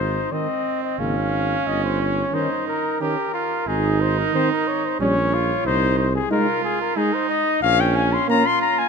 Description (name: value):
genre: classical, brass quintet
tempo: 90 BPM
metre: 3/4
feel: straight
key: Ab major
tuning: A4 = 440 Hz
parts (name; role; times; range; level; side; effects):
- mellow trumpet; melody; 0.0-8.9 s; Ab4 to C6; -23 LUFS; left 8 dB; none
- clear trumpet; second line; 0.0-8.9 s; C4 to G4; -24 LUFS; right 10 dB; none
- mellow bass trombone; bass; 0.0-8.2 s; G1 to C2; -24 LUFS; right 2 dB; none
- dark trombone; accompaniment; 0.3-8.4 s; Db3 to Bb3; -27 LUFS; right 4 dB; none
- warm French horn; accompaniment; 0.3-8.5 s; Bb3 to Eb4; -30 LUFS; left 4 dB; none
room: moderate concert hall reverb, RT60 2.5 s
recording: none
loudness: -18 LUFS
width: side -5 dB against mid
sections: 0.0-8.9 A section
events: none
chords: 0.0 Ab; 1.0 Bbm7/Ab; 1.7 Eb7/G; 3.7 Ab; 5.0 Gdim/Bb; 5.7 Ab/C; 7.6 Bbm